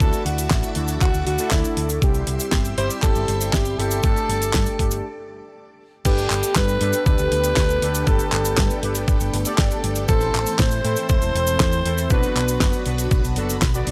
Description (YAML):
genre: italo disco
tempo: 119 BPM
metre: 4/4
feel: straight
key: unclear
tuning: A4 = 443 Hz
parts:
  - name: raspy alto saxophone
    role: melody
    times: 0.0-13.1 s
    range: E4 to C5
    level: -27 LUFS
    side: equal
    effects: tape echo
  - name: phased string machine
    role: sustained chords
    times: 0.0-13.9 s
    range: D3 to E6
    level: -34 LUFS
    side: equal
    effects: ensemble chorus, phaser
  - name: analog synth brass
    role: stabs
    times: 0.0-13.9 s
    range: G3 to D5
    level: -30 LUFS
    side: equal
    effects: chorus
  - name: hollow-body short-scale fingered electric bass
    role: bass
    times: 0.0-13.9 s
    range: E1 to A2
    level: -27 LUFS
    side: equal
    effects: none
  - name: damped 70s drum kit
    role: drums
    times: 0.0-13.9 s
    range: cabasa, crash cymbal, handclaps, hi-hat, snare drum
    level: -27 LUFS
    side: equal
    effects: none
  - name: electronic kick drum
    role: drums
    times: 0.0-13.7 s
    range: none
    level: -23 LUFS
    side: equal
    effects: none
room: studio reverb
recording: dry, gritty hardware recording, transformer saturation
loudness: -20 LUFS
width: mono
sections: 0.0-6.1 A section; 6.1-13.9 B section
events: break 5.0-6.1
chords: 0.0 Dadd9; 2.0 C; 4.0 Gsus2; 6.1 Gadd9; 10.1 Am; 12.1 Bm